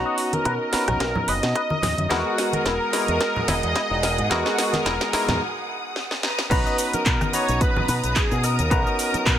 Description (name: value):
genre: nu-disco, nu disco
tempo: 109 BPM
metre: 4/4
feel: swing 55% on 16ths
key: unclear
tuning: A4 = 440 Hz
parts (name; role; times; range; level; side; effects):
- wide unison lead; melody; 0.0-9.4 s; F#4 to D#5; -26 LUFS; equal; dub echo
- bell-like tine electric piano; accompaniment; 0.0-9.4 s; G#3 to A#5; -27 LUFS; right 1 dB; sidechain pumping
- rich studio string section; sustained chords; 0.0-9.4 s; B3 to D#6; -31 LUFS; equal; sidechain pumping, low-pass filter
- clean electric guitar; riff; 0.1-9.3 s; D#4 to D#5; -31 LUFS; left 4 dB; analog chorus, low-pass filter
- house drum kit; drums; 0.2-9.4 s; crash cymbal, handclaps, hi-hat, rim click, shaker, snare drum; -26 LUFS; equal; high-pass filter on hats, high-pass filter on snare, high-pass filter on cymbals, high-pass filter on perc
- fingered electric bass with an envelope filter; bass; 0.3-9.4 s; E1 to B2; -27 LUFS; equal; tube saturation, sidechain pumping
- congas and bongos; percussion; 0.3-9.2 s; none; -29 LUFS; equal; none
- electronic kick drum; drums; 0.5-9.4 s; none; -24 LUFS; equal; high-pass filter on kick
room: light reverb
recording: none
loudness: -20 LUFS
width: side -10 dB against mid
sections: 0.0-6.5 A section; 6.5-9.4 B section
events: build-up 0.0-6.5; drum fill 0.0-5.4, 6.0-6.5; break 5.4-6.5; drop 6.5-9.4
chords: 0.0 Bmaj7; 2.1 Emaj9#11; 6.2 Bmaj7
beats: 0.46 1.01 1.56 | 2.11 2.66 3.21 3.76 | 4.31 4.86 5.41 5.96 | 6.51 7.06 7.61 8.16 | 8.71 9.26